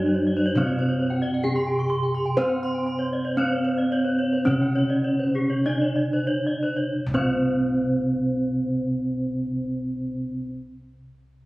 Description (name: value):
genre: Balinese gamelan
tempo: 44-74 BPM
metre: 4/4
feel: straight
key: C pelog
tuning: A4 = 436 Hz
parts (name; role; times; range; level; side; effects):
- gamelan-type bronze metallophone; melody; 0.0-10.5 s; C4 to C5; -24 LUFS; equal; none
- gamelan-type bronze metallophone; accompaniment; 0.0-10.5 s; C3 to C4; -31 LUFS; equal; none
- gamelan-type bronze metallophone; arpeggios; 0.0-10.5 s; C5 to C6; -33 LUFS; right 1 dB; none
- gamelan-type bossed gongs; bass; 0.0-10.4 s; C2 to C5; -29 LUFS; equal; none
- gamelan-type bronze metallophone; arpeggios; 0.1-10.5 s; Ab4-40c to Db6; -32 LUFS; left 1 dB; none
room: moderate recital hall reverb, RT60 1.6 s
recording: recorded on a phone in the room, club reverb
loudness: -21 LUFS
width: side -19 dB against mid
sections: 0.0-6.9 A section; 6.9-11.5 B section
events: slowing down 0.0-6.9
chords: none